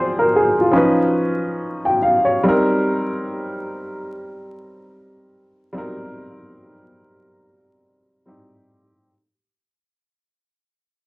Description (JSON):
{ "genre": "hip hop", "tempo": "72 BPM", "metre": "4/4", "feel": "swing 57% on 16ths", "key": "C minor", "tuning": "A4 = 440 Hz", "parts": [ { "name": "warm upright piano", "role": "solo", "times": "0.0-9.1 s", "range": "F3 to G5", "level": "-17 LUFS", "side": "equal", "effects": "cassette tape, low-pass filter" } ], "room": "wet studio reverb, RT60 0.5 s", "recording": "vinyl crackle", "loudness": "-16 LUFS", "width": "side -22 dB against mid", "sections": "0.0-9.1 A section", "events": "fade-out 0.0-9.1", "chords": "0.0 Dm7b5; 0.8 Db9; 2.4 Cm7", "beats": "0.76 1.59 | 2.43 3.26 4.09 4.93 | 5.76 6.59 7.43 8.26" }